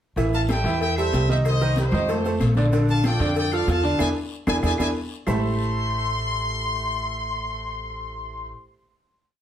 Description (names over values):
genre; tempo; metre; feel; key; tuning
latin, salsa; 188 BPM; 4/4; straight; A phrygian; A4 = 440 Hz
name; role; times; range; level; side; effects
bright concert grand piano; accompaniment; 0.2-8.5 s; D3 to E5; -26 LUFS; right 2 dB; none
upright bass; bass; 0.2-8.5 s; A1 to F2; -25 LUFS; equal; none
congas; percussion; 0.2-5.3 s; none; -30 LUFS; left 1 dB; none
cowbell and bongos; percussion; 0.2-5.3 s; none; -32 LUFS; left 6 dB; none
guiro; percussion; 0.2-5.3 s; none; -44 LUFS; left 6 dB; none
maracas; percussion; 0.2-5.3 s; none; -47 LUFS; right 4 dB; none
brilliant trumpet section; melody; 0.3-8.5 s; G4 to C6; -27 LUFS; left 2 dB; plate reverb
claves; percussion; 0.5-5.3 s; none; -40 LUFS; left 5 dB; none
room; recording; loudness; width
wet studio reverb, RT60 0.7 s; heard from further back in the room; -20 LUFS; side -10 dB against mid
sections
0.2-5.3 mambo (horn riffs); 5.3-7.8 final chord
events
band accent 4.0-5.3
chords
0.2 Am7; 1.4 Cm7; 2.1 F; 2.7 Bbmaj7; 4.0 E7; 5.3 Am7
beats
| 0.17 0.49 0.81 1.13 | 1.45 1.76 2.08 2.40 | 2.72 3.04 3.36 3.68 | 3.99 4.31 4.63 4.95 | 5.27 5.59 5.91 6.23 | 6.55 6.87 7.19 7.51